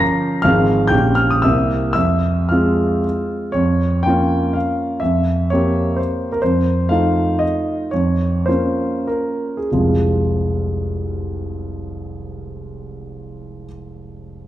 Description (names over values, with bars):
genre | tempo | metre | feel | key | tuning
classical, romantic triple-time dance for piano with dotted rhythms | 88-138 BPM | 3/4 | rubato | F minor | A4 = 440 Hz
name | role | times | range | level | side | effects
warm grand piano | solo | 0.0-14.5 s | F1 to Bb6 | -16 LUFS | equal | none
room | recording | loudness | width
wet recital hall reverb, RT60 1.8 s | dark, warm production | -15 LUFS | side -13 dB against mid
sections
0.0-3.5 A section; 3.5-9.7 B section; 9.7-13.1 C section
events
slowing down 5.8-9.7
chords
0.5 Fm/Ab; 0.9 Gm7b5/Bb; 1.4 C7; 2.0 Fm; 3.5 Bbm/F; 5.0 C7/F; 6.4 F7; 7.9 Bbm/F; 9.7 Fm